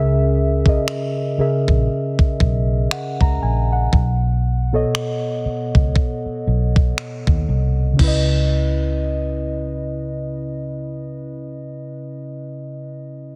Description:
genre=contemporary R&B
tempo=59 BPM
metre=4/4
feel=swing 58% on 16ths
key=C# minor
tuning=A4 = 437 Hz
part: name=muted felt-like synth keys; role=accompaniment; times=0.0-13.4 s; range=B2 to A#5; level=-24 LUFS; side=equal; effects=chorus
part: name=vintage muted fingered electric bass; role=bass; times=0.0-11.8 s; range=A#1 to D#2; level=-22 LUFS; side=equal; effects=none
part: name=gated 80s digital drum machine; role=drums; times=0.7-8.3 s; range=crash cymbal, finger snaps, kick drum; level=-19 LUFS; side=equal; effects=soft clipping on snare
room=digital ambience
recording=dense, heavily limited modern master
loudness=-19 LUFS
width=mono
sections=0.0-8.0 A section; 8.0-12.1 B section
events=none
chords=0.0 A#m7b5; 3.9 B7; 8.0 C#m7

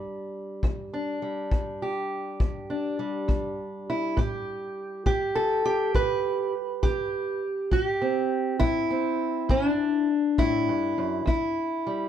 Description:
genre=acoustic country blues, solo or duo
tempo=68 BPM (dotted quarters)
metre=12/8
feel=straight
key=unclear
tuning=A4 = 439 Hz
part: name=fingerpicked steel-string acoustic guitar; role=melody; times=0.0-12.1 s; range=E2 to B4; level=-25 LUFS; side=equal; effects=none
part: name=kick drum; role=drums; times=0.6-11.4 s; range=none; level=-27 LUFS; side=left 1 dB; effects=none
room=light reverb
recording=dark, warm production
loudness=-24 LUFS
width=side -9 dB against mid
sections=0.0-12.1 A section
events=none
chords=0.0 Em7; 4.2 Am7; 11.3 Em

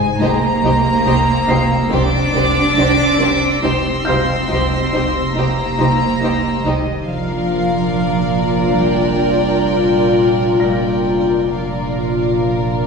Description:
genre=cinematic, suspense film score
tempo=70 BPM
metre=4/4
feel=straight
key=unclear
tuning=A4 = 439 Hz
part: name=rich studio violin section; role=melody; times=0.0-12.9 s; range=Eb5 to D6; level=-21 LUFS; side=left 1 dB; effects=none
part: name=glass harmonica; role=sustained chords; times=0.0-12.9 s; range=C4 to D5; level=-24 LUFS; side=left 4 dB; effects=none
part: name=warm studio cello section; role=bass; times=0.0-12.9 s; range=Eb3 to D4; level=-20 LUFS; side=right 3 dB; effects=none
part: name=warm sub bass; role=drone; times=0.0-12.9 s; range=F1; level=-26 LUFS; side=right 1 dB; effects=none
part: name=felt-muted upright piano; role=texture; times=0.0-12.9 s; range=G6 to C7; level=-30 LUFS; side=left 2 dB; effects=none
part: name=warm studio violin section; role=second line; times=0.2-12.9 s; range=G4 to D5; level=-22 LUFS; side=left 1 dB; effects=none
part: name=dark studio viola section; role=accompaniment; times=0.2-12.9 s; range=Eb3 to F4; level=-21 LUFS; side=left 1 dB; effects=none
part: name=rich studio double bass section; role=bass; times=0.2-12.9 s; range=Bb1 to C2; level=-22 LUFS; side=right 3 dB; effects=none
part: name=clear studio violin section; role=texture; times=0.2-6.6 s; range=C6 to Bb6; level=-28 LUFS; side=left 1 dB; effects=none
room=wet recital hall reverb, RT60 1.7 s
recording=recorded in a church or concert hall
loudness=-13 LUFS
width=side -5 dB against mid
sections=0.0-12.9 A section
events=none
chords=0.2 Cm; 7.1 Bb/F

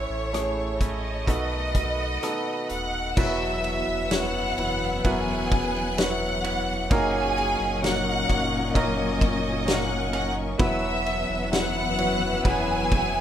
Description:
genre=pop ballad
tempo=64 BPM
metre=4/4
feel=straight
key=E lydian from 3.2 s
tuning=A4 = 440 Hz
part: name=bright studio violin section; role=melody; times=0.0-13.2 s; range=G#4 to F#6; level=-28 LUFS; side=equal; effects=none
part: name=clear concert grand piano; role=accompaniment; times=0.0-13.2 s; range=B2 to C#5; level=-30 LUFS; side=right 1 dB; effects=none
part: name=bright studio string section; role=sustained chords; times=0.0-13.2 s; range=A3 to F#6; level=-34 LUFS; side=left 3 dB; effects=none
part: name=direct-recorded clean electric guitar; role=arpeggios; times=0.0-13.2 s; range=E2 to B4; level=-36 LUFS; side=right 6 dB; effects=none
part: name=sub bass with octave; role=bass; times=0.0-13.2 s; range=D#1 to B1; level=-33 LUFS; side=equal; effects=none
part: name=loose indie drum kit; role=drums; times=0.3-13.1 s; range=crash cymbal, hi-hat, kick drum, ride cymbal, rim click, snare drum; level=-26 LUFS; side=equal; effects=none
part: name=dark chamber cello section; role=second line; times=3.2-13.2 s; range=F#2 to C#4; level=-31 LUFS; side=left 4 dB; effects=digital delay
room=little or no reverb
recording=rough home demo mix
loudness=-22 LUFS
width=side -10 dB against mid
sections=0.0-3.2 A section; 3.2-13.2 B section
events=none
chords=0.0 A; 1.3 B7; 3.2 Esus2; 6.9 F#6; 10.6 Esus2

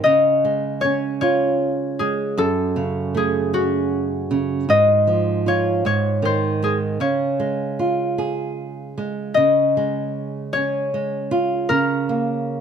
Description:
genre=children's music, lullaby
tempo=52 BPM (dotted quarters)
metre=6/8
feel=rubato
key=Db major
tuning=A4 = 440 Hz
part: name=concert harp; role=melody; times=0.0-12.6 s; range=Gb4 to Eb5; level=-20 LUFS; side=left 3 dB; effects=none
part: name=flamenco guitar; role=accompaniment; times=0.0-12.6 s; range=Gb2 to Ab4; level=-22 LUFS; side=right 4 dB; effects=none
room=light reverb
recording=close, detailed microphones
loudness=-18 LUFS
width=side -7 dB against mid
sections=0.0-9.4 A section; 9.4-12.6 B section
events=none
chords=0.0 Db; 2.4 Gbm; 4.7 Dbadd9/Ab; 5.8 Ab5; 7.0 Db; 11.7 Bbm/Db

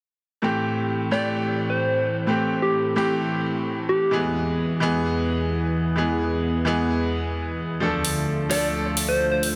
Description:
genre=EDM, festival progressive house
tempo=130 BPM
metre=4/4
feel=straight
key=A minor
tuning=A4 = 440 Hz
part: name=bright baby grand piano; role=accompaniment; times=0.4-9.6 s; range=A2 to A4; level=-27 LUFS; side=equal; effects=digital delay
part: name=lush unison pad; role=sustained chords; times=0.4-9.6 s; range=D2 to A4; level=-29 LUFS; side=equal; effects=chorus, vintage 12-bit sampler grit
part: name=soft struck synth lead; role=melody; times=1.1-4.2, 8.5-9.5 s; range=G4 to D5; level=-27 LUFS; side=equal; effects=chorus, cassette tape, delay
part: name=electronic hi-hat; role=drums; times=8.0-9.5 s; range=none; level=-30 LUFS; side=equal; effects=low-pass filter on hats, low-pass filter on room
room=light reverb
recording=none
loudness=-24 LUFS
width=mono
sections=0.4-9.6 A section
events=filter sweep on analog synth pad 0.4-9.6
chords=0.4 Am7; 4.1 E; 7.8 Dm

